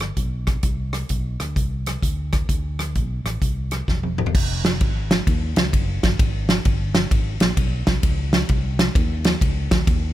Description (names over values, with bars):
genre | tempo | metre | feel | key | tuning
uptempo gospel | 130 BPM | 4/4 | swing 65% on 8ths | unclear | A4 = 441 Hz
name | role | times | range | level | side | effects
fingered electric bass | bass | 0.0-10.1 s | E1 to Eb2 | -25 LUFS | equal | none
natural country drum kit | drums | 0.0-10.0 s | crash cymbal, hi-hat, kick drum, ride cymbal, rim click, snare drum, toms | -20 LUFS | equal | none
room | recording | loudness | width
little or no reverb | none | -19 LUFS | side -14 dB against mid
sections
0.0-4.3 A section; 4.3-10.1 B section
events
drum fill 3.9-4.3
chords
none